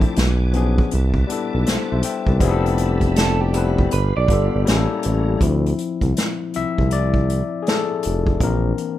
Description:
R&B, neo-soul; 80 BPM; 4/4; swing 63% on 16ths; C major; A4 = 440 Hz
overdriven tine electric piano; accompaniment; 0.0-9.0 s; E3 to G5; -23 LUFS; left 6 dB
bright tonewheel organ; sustained chords; 0.0-5.4 s; G4 to D6; -35 LUFS; right 1 dB; slow rotary speaker, chorus vibrato
smooth synth bass; bass; 0.0-8.7 s; F1 to D2; -19 LUFS; equal
unplugged drum kit; drums; 0.0-9.0 s; hi-hat, kick drum, snare drum; -22 LUFS; equal
electric guitar through a small old amp; second line; 3.2-4.6 s; G4 to D5; -24 LUFS; right 7 dB
light reverb; rough home demo mix; -17 LUFS; side -13 dB against mid
0.0-5.4 A section; 5.4-9.0 B section
tine electric piano solo 5.4-9.0
0.2 Bdim7; 0.9 Cmaj13; 2.4 Fmaj9#11; 3.9 G7; 4.7 A7b9; 5.4 Dm9; 8.4 Bbadd9(#11)
0.16 0.91 1.66 | 2.41 3.16 3.91 4.66 | 5.41 6.16 6.91 7.66 | 8.41

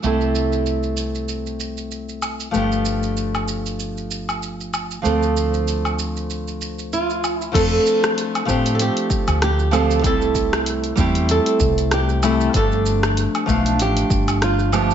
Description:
sunset chillout; 96 BPM; 4/4; swing 56% on 16ths; C major; A4 = 439 Hz
nylon-string guitar; accompaniment; 0.0-14.9 s; F3 to A4; -22 LUFS; moving between left 5 dB and right 4 dB; auto-pan, low-pass filter, ping-pong delay, slapback echo
woody fretless electric bass; bass; 0.0-14.9 s; G1 to A2; -23 LUFS; equal; analog chorus
deep house drum kit; drums; 0.0-14.9 s; crash cymbal, hi-hat, rim click, shaker, woodblock; -25 LUFS; right 1 dB; low-pass filter on perc, low-pass filter on hats, low-pass filter on snare, low-pass filter on cymbals, low-pass filter on room
flamenco guitar; melody; 6.9-14.9 s; F4 to A4; -23 LUFS; right 3 dB; ping-pong delay, slapback echo
electronic kick drum; drums; 7.5-14.2 s; -23 LUFS; equal
wet recital hall reverb, RT60 1.3 s; big arena sound, nothing above 7.7 kHz; -18 LUFS; side -9 dB against mid
0.0-7.5 A section; 7.5-14.9 B section
0.0 C6; 2.5 G9; 5.0 Dm7; 7.5 F6; 10.0 C6; 12.5 G9
| 0.04 0.67 1.29 1.92 | 2.54 3.17 3.79 4.42 | 5.04 5.67 6.29 6.92 | 7.54 8.16 8.79 9.41 | 10.04 10.66 11.29 11.91 | 12.54 13.16 13.79 14.41

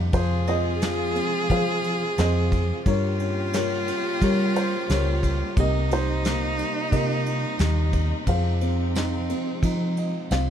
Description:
acoustic folk-pop ballad; 88 BPM; 4/4; straight; F minor; A4 = 440 Hz
dark upright piano; melody; 0.0-10.5 s; C3 to G5; -28 LUFS; left 1 dB
warm studio string section; sustained chords; 0.0-10.5 s; C3 to G4; -33 LUFS; left 2 dB
vintage muted fingered electric bass; bass; 0.0-10.5 s; C2 to G3; -24 LUFS; equal
clear cello; second line; 0.1-10.5 s; C4 to Ab4; -29 LUFS; right 2 dB
soft brush drum kit; drums; 0.1-10.5 s; kick drum, ride cymbal, snare drum; -29 LUFS; equal
little or no reverb; close, detailed microphones; -21 LUFS; side -9 dB against mid
0.0-10.5 A section
upright piano fill 9.6-10.5
0.1 Fm; 2.9 Gdim; 5.6 Cm7; 8.3 Fm7
| 0.14 0.82 1.50 2.18 | 2.86 3.54 4.21 4.89 | 5.57 6.24 6.92 7.60 | 8.27 8.95 9.63 10.30

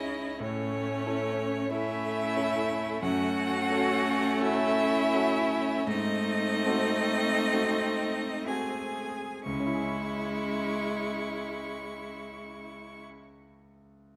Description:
classical, slow romantic movement for piano quintet; 30-47 BPM; 4/4; rubato; C# minor; A4 = 441 Hz
clear violin; melody; 0.0-13.0 s; C#5 to C#6; -35 LUFS; equal
rich cello; second line; 0.0-13.0 s; C#4 to G#4; -38 LUFS; equal
rich violin; second line; 0.0-13.0 s; B#3 to E4; -37 LUFS; equal
rich viola; accompaniment; 0.0-13.0 s; G#3 to C#4; -36 LUFS; equal
warm grand piano; accompaniment; 0.0-14.2 s; C#2 to E5; -36 LUFS; equal
wet scoring stage reverb, RT60 1.6 s; -29 LUFS; mono
0.0-9.5 A section; 9.5-14.2 B section
slowing down 0.0-9.5
0.4 A; 3.0 F#m; 5.9 G#7b9; 9.5 C#m
0.42 1.71 | 3.03 4.42 5.89 7.53 | 9.46 11.35 13.26

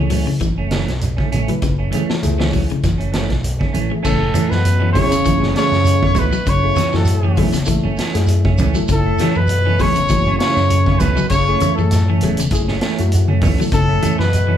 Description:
afrobeat; 99 BPM; 4/4; swing 55% on 16ths; F# minor; A4 = 442 Hz
barky reed electric piano; accompaniment; 0.0-14.2 s; A3 to G#5; -26 LUFS; left 4 dB
electric guitar at the edge of break-up; arpeggios; 0.0-14.6 s; C#3 to F#3; -22 LUFS; left 4 dB
clean electric guitar; stabs; 0.0-14.6 s; E3 to C#4; -24 LUFS; right 6 dB; vibrato effect
fingered electric bass; bass; 0.0-14.6 s; E1 to F#2; -19 LUFS; equal
vintage drum kit; drums; 0.1-14.5 s; crash cymbal, hi-hat, kick drum, snare drum; -22 LUFS; equal
congas; percussion; 0.1-14.2 s; -24 LUFS; right 2 dB
shekere; percussion; 0.1-14.5 s; -26 LUFS; right 2 dB
bright trombone section; second line; 4.0-14.6 s; A2 to C#3; -24 LUFS; right 3 dB
warm trumpet; melody; 4.1-14.6 s; A4 to C#5; -19 LUFS; left 1 dB; slapback echo
moderate large studio reverb, RT60 1.2 s; band playing live in one room; -14 LUFS; side -10 dB against mid
0.0-4.0 A section; 4.0-14.6 B section
reed electric piano fill 7.7-8.9, 12.5-13.7
0.0 F#m7
0.40 1.01 | 1.62 2.22 2.83 3.44 | 4.04 4.65 5.25 5.86 | 6.46 7.07 7.67 8.28 | 8.88 9.49 10.09 10.70 | 11.30 11.90 12.51 13.11 | 13.72 14.32

